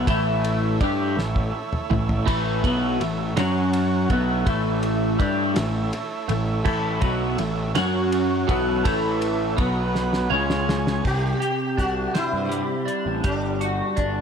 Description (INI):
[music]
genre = psychedelic rock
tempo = 55 BPM (dotted quarters)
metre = 6/8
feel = straight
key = A mixolydian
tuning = A4 = 440 Hz
[part]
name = overdriven combo organ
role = sustained chords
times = 0.0-11.0 s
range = E3 to G#5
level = -30 LUFS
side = right 5 dB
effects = none
[part]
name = twelve-string electric guitar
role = riff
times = 0.0-14.2 s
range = A2 to G4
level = -24 LUFS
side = equal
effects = phaser, double-tracked left and right
[part]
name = fuzz picked electric bass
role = bass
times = 0.0-14.2 s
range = G1 to G2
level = -26 LUFS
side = equal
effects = overdrive
[part]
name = cloth-damped thuddy drum kit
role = drums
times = 0.1-14.2 s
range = crash cymbal, hi-hat, kick drum, ride cymbal, snare drum, toms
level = -28 LUFS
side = equal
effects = none
[part]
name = sitar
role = melody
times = 11.1-14.2 s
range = D4 to G4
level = -27 LUFS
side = equal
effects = diffuse ambient delay
[sound]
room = moderate plate reverb, RT60 3.0 s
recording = dreamy mix soaked in reverb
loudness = -20 LUFS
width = side -7 dB against mid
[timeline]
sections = 0.0-11.1 A section; 11.1-14.2 B section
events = drum fill 1.2-2.3, 10.0-11.1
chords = 0.0 A; 3.4 F#5; 4.1 A; 7.8 F#5; 8.5 A; 9.6 B5; 10.3 C#5; 11.1 Csus2; 13.2 Gmaj7(no3)